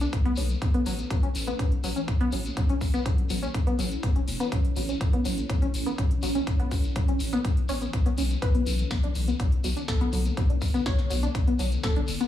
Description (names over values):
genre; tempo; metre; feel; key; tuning
progressive house; 123 BPM; 4/4; straight; unclear; A4 = 440 Hz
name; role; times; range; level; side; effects
shimmering ambient pad; sustained chords; 0.0-12.3 s; D3 to C#4; -35 LUFS; right 1 dB; chorus, built-in reverb, phaser, sidechain pumping
tight sequenced synth; arpeggios; 0.0-12.3 s; F#3 to D4; -31 LUFS; left 2 dB; chorus, sidechain pumping, tape echo
saturated sub bass; bass; 0.0-12.2 s; E1 to B1; -30 LUFS; left 1 dB; sidechain pumping
big-room dance drum kit; drums; 0.0-12.3 s; hi-hat, snare drum; -39 LUFS; equal; sidechain pumping on hats
shekere; percussion; 0.0-12.3 s; none; -39 LUFS; left 3 dB; none
electronic kick drum; drums; 0.1-11.9 s; none; -24 LUFS; left 1 dB; none
congas; percussion; 0.4-12.2 s; none; -40 LUFS; left 3 dB; none
wide unison pluck; melody; 8.4-12.3 s; A4 to C#5; -37 LUFS; left 4 dB; cassette tape, sidechain pumping, tape echo
room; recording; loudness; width
little or no reverb; small room ambience; -24 LUFS; side -12 dB against mid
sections
0.0-12.3 A section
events
none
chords
0.0 Bm7; 0.6 A; 8.4 Bm7